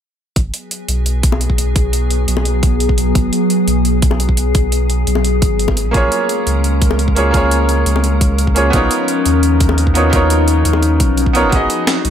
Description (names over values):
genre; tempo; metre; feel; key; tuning
liquid drum and bass; 172 BPM; 4/4; straight; G# dorian; A4 = 440 Hz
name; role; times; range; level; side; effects
glassy FM pad; sustained chords; 0.8-12.1 s; E#3 to A#4; -18 LUFS; left 2 dB; ensemble chorus, built-in reverb
warm sub bass; bass; 0.4-12.1 s; F#1 to D#2; -16 LUFS; equal; none
breakbeat sampler-style drum kit; drums; 0.4-12.1 s; hi-hat, snare drum; -21 LUFS; right 1 dB; none
electronic kick drum; drums; 0.4-11.6 s; none; -15 LUFS; equal; none
bongos; percussion; 1.3-10.8 s; none; -23 LUFS; left 6 dB; none
bright baby grand piano; accompaniment; 5.9-12.1 s; A#3 to D#5; -16 LUFS; right 2 dB; tape echo
room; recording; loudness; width
little or no reverb; none; -12 LUFS; side -9 dB against mid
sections
0.4-12.1 A section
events
none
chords
0.4 G#m7; 5.8 A#m7; 8.7 Bmaj9#11; 11.5 G#m7